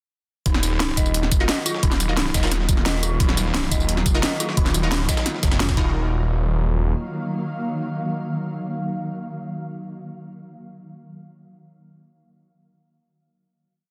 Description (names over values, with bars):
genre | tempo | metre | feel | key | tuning
dark technical drum and bass | 175 BPM | 4/4 | straight | Eb minor | A4 = 441 Hz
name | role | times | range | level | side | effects
swarming drone | sustained chords | 1.6-9.4 s | Eb3 to F5 | -31 LUFS | equal | built-in reverb, sidechain pumping
dark detuned synth bell | arpeggios | 0.5-6.1 s | Eb4 to Eb5 | -33 LUFS | equal | chorus, sidechain pumping, dub echo
phased detuned saw bass | bass | 0.5-6.9 s | Eb1 to F1 | -25 LUFS | equal | phaser, tube saturation, sidechain pumping
breakbeat sampler-style drum kit | drums | 0.5-5.8 s | hi-hat, snare drum | -34 LUFS | equal | none
drum and bass drum kit | drums | 0.5-5.7 s | hi-hat, snare drum, tambourine | -27 LUFS | equal | overdrive
electronic kick drum | drums | 0.5-5.8 s | none | -23 LUFS | equal | overdrive
orchestra-hit-like synth stab | stabs | 1.4-10.1 s | Eb4 to Bb4 | -33 LUFS | equal | built-in reverb, dub echo
room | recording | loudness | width
light reverb, digital ambience | dense, heavily limited modern master | -22 LUFS | mono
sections
0.5-5.9 drop; 5.9-8.7 final hit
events
drop 0.5-5.9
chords
0.5 Ebmadd9